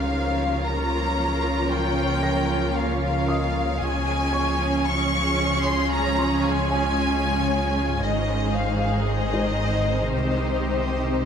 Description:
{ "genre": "cinematic", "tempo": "114 BPM", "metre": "4/4", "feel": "straight", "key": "unclear", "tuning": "A4 = 440 Hz", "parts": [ { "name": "warm symphonic violin section", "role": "melody", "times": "0.0-11.3 s", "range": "C5 to Db6", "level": "-27 LUFS", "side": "left 2 dB", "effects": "none" }, { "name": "warm symphonic violin section", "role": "second line", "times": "0.0-11.3 s", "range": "G4 to Db5", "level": "-30 LUFS", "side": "left 3 dB", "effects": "none" }, { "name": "clear symphonic viola section", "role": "accompaniment", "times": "0.0-11.3 s", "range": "Eb3 to F4", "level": "-30 LUFS", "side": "right 1 dB", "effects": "none" }, { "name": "granular cloud pad", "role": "sustained chords", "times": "0.0-11.3 s", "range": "G3 to Eb5", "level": "-29 LUFS", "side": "right 1 dB", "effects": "built-in reverb" }, { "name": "rich symphonic cello section", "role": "bass", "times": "0.0-11.3 s", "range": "Ab2 to Db3", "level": "-28 LUFS", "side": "right 3 dB", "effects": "none" }, { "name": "sub bass with octave", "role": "bass", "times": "0.0-11.3 s", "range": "Ab1 to Db2", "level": "-28 LUFS", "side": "equal", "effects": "none" }, { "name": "felt-muted upright piano", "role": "texture", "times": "0.0-11.3 s", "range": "C5 to Bb6", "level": "-35 LUFS", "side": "equal", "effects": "none" } ], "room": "moderate recital hall reverb, RT60 1.3 s", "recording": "close, detailed microphones", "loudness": "-21 LUFS", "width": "side -7 dB against mid", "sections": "0.0-11.3 A section", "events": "none", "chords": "0.0 Bbm/Db; 3.8 Db; 8.0 Ab; 10.1 Cm" }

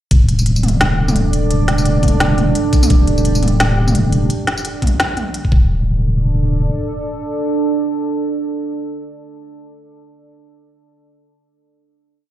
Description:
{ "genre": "half-time drum and bass", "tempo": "172 BPM", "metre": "4/4", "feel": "swing 58% on 16ths, half-time", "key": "unclear", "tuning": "A4 = 443 Hz", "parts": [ { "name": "deep dark ambient pad", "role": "sustained chords", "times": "0.8-9.2 s", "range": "D4 to D5", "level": "-21 LUFS", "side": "right 3 dB", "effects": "chorus, built-in reverb, sidechain pumping" }, { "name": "deep soft wobble bass", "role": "bass", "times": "0.1-6.7 s", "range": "D1", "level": "-14 LUFS", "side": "equal", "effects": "chorus" }, { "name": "electronic kick drum", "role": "drums", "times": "0.1-5.6 s", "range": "none", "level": "-12 LUFS", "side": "equal", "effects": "none" }, { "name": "organic electronic drum kit", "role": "drums", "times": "0.1-5.4 s", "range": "hi-hat, snare drum, tambourine, toms", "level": "-19 LUFS", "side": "equal", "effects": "none" } ], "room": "light reverb, digital ambience", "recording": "played on a big sound system in a bare room, large studio reverb", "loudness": "-14 LUFS", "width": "side -12 dB against mid", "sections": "0.1-5.7 drop; 5.7-8.5 final hit", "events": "drop 0.1-5.7", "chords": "0.1 D5" }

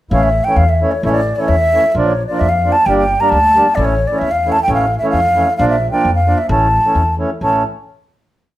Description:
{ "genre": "klezmer", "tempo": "132 BPM", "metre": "2/4", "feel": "straight", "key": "A phrygian dominant", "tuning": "A4 = 440 Hz", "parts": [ { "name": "mellow hollow concert flute", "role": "melody", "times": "0.1-7.6 s", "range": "C#5 to Bb5", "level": "-14 LUFS", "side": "equal", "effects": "none" }, { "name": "mellow accordion", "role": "accompaniment", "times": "0.1-7.6 s", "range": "E3 to D4", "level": "-18 LUFS", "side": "right 1 dB", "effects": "none" }, { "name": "upright bass", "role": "bass", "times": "0.1-7.6 s", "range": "G1 to F2", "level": "-18 LUFS", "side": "equal", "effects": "none" } ], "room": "wet studio reverb, RT60 0.6 s", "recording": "heard from further back in the room", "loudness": "-12 LUFS", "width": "side -14 dB against mid", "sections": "0.1-7.4 A section; 7.4-8.3 final chord", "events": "none", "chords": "0.1 A; 1.9 Bb; 2.9 Gm; 3.8 A; 5.6 Bb; 6.5 A" }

